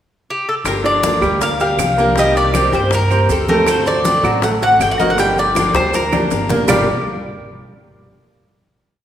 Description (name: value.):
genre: latin, Cuban son and guajira.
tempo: 159 BPM.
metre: 4/4.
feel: straight.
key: G minor.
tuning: A4 = 440 Hz.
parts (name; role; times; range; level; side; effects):
Cuban tres; melody; 0.3-6.9 s; G4 to G5; -17 LUFS; equal; none.
upright bass; bass; 0.6-6.9 s; G1 to G2; -22 LUFS; equal; none.
picked steel-string acoustic guitar; accompaniment; 0.7-6.8 s; G2 to G4; -21 LUFS; left 2 dB; none.
bongos; percussion; 0.7-6.8 s; none; -26 LUFS; left 3 dB; none.
claves; percussion; 0.7-6.8 s; none; -28 LUFS; right 4 dB; none.
congas; percussion; 0.7-6.8 s; none; -26 LUFS; left 1 dB; none.
maracas; percussion; 0.7-6.8 s; none; -31 LUFS; right 7 dB; none.
clear grand piano; arpeggios; 0.8-6.9 s; F#3 to G5; -19 LUFS; right 2 dB; none.
room: wet recital hall reverb, RT60 1.9 s.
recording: recorded in a church or concert hall.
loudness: -13 LUFS.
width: side -10 dB against mid.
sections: 0.0-0.7 pickup bar; 0.7-6.7 A section; 6.7-8.2 final chord.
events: drum fill 5.7-6.7.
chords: 0.0 N.C.; 0.7 Gm7; 2.2 Cm7; 3.7 D7; 5.2 Gm7.